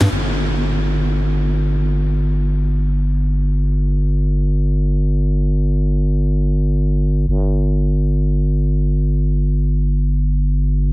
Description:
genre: techno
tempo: free time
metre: none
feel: none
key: unclear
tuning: A4 = 440 Hz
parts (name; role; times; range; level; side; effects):
- growling FM bass; bass; 0.0-10.9 s; G1 to G2; -16 LUFS; equal; none
room: digital ambience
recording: none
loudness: -16 LUFS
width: side -22 dB against mid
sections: 0.1-10.9 A section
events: none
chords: none

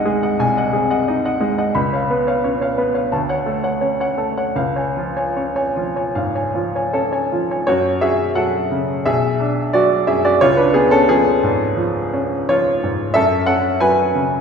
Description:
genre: classical, romantic character piece for solo piano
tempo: 75-92 BPM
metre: 4/4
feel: rubato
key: unclear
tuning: A4 = 438 Hz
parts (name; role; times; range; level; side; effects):
- bright baby grand piano; solo; 0.0-14.4 s; B1 to B5; -15 LUFS; equal; none
room: wet recital hall reverb, RT60 1.4 s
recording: heard from further back in the room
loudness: -15 LUFS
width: side -6 dB against mid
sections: 0.0-7.7 A section; 7.7-14.4 B section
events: none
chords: 0.0 G#7/B#; 1.7 C#7; 3.1 Dmaj7; 4.6 C#; 7.7 F#m; 9.1 Bm; 10.4 C#; 13.1 F#m

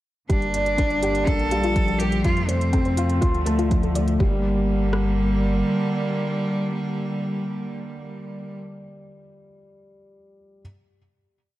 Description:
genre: piano and strings electronica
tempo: 123 BPM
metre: 4/4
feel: straight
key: G minor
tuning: A4 = 441 Hz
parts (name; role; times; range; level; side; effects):
- bright cello; melody; 0.3-8.6 s; G3 to A4; -27 LUFS; equal; none
- warm chamber string section; sustained chords; 0.3-8.6 s; C3 to Bb3; -29 LUFS; right 2 dB; sidechain pumping, low-pass filter
- soft round pluck; arpeggios; 0.3-4.4 s; F4 to A5; -33 LUFS; left 3 dB; chorus, sidechain pumping, tape echo
- felt-muted upright piano; riff; 0.3-10.6 s; F3 to D5; -27 LUFS; left 1 dB; none
- round analog bass; bass; 0.3-5.6 s; G1 to F2; -25 LUFS; equal; sidechain pumping
- deep house drum kit; drums; 0.3-5.0 s; kick drum, rim click; -22 LUFS; equal; overdrive
- electronic hi-hat; drums; 0.3-4.2 s; none; -38 LUFS; right 2 dB; none
room: moderate echo chamber reverb, RT60 2.1 s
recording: dark, warm production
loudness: -20 LUFS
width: side -15 dB against mid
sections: 0.3-4.2 build; 4.2-8.1 final chord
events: build-up 0.3-4.2; filter sweep on string section 0.3-4.2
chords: 0.3 Gm; 1.3 Bb6; 2.2 F; 3.2 Dm; 4.2 Gm

